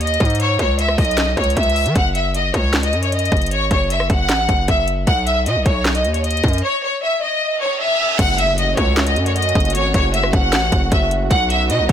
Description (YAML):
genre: hip hop, trap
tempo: 154 BPM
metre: 4/4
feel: half-time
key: F# dorian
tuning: A4 = 440 Hz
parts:
  - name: clear studio violin section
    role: melody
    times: 0.0-11.9 s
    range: C#5 to F#5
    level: -18 LUFS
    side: left 1 dB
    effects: none
  - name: distorted 808-style bass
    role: bass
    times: 0.0-11.9 s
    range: F#1 to E3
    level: -20 LUFS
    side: equal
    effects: distortion
  - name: trap drum kit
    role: drums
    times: 0.0-11.9 s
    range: crash cymbal, handclaps, hi-hat, kick drum, rim click, snare drum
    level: -19 LUFS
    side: equal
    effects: none
  - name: reverse cymbal and impact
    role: sound effects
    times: 7.6-9.7 s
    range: none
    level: -26 LUFS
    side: right 4 dB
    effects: none
  - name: warm analog pad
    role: sustained chords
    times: 8.2-11.9 s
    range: A3 to F#4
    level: -26 LUFS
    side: right 2 dB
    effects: chorus, tremolo
room: light reverb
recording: blown-out, overdriven recording, overdrive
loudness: -15 LUFS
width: side -9 dB against mid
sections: 0.0-8.2 A section; 8.2-11.9 B section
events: reverse cymbal 7.6-8.2; impact 8.2-9.7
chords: 0.4 C#m; 2.0 F#5; 5.1 B; 6.6 N.C.; 8.2 F#m; 11.3 B